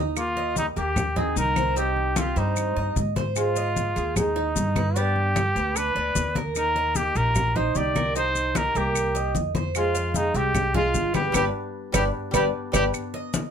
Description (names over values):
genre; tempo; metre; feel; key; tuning
latin, Cuban son and guajira; 150 BPM; 4/4; straight; C minor; A4 = 439 Hz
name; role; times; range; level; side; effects
koto; second line; 0.0-13.5 s; G3 to G4; -32 LUFS; left 1 dB; none
Cuban tres; arpeggios; 0.0-13.5 s; Ab3 to F5; -29 LUFS; right 3 dB; none
upright bass; bass; 0.0-12.9 s; G1 to Ab2; -28 LUFS; equal; none
breathy trumpet; melody; 0.2-12.8 s; Eb4 to D5; -26 LUFS; equal; none
claves; percussion; 0.2-13.1 s; none; -33 LUFS; right 10 dB; none
congas; percussion; 0.2-13.5 s; none; -29 LUFS; left 3 dB; none
maracas; percussion; 0.2-13.5 s; none; -34 LUFS; left 8 dB; none
room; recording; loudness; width
light reverb; close, detailed microphones; -22 LUFS; side -8 dB against mid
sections
0.2-12.9 A section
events
drum fill 0.0, 12.5-12.9; band accent 11.3-12.9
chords
0.0 Cm; 3.4 Ab; 5.0 G; 6.6 Eb6; 8.2 Cm7; 9.7 Fm; 11.3 G; 12.9 N.C.